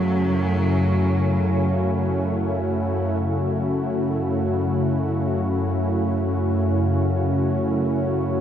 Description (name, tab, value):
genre	dark ambient drone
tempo	free time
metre	none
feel	none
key	unclear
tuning	A4 = 440 Hz
part	warm cello	melody	0.0-2.2 s	F#3	-27 LUFS	right 2 dB	diffuse ambient delay
part	sweeping resonant pad	sustained chords	0.0-8.4 s	A3 to F#4	-24 LUFS	equal	chorus
part	organ-like drone	drone	0.0-8.4 s	F#2 to C#3	-23 LUFS	left 1 dB	ensemble chorus, built-in reverb
room	wet cathedral reverb, RT60 6.0 s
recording	in a vast, echoing space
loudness	-20 LUFS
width	side -9 dB against mid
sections	0.0-3.2 A section; 3.2-8.4 B section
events	none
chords	0.0 F#m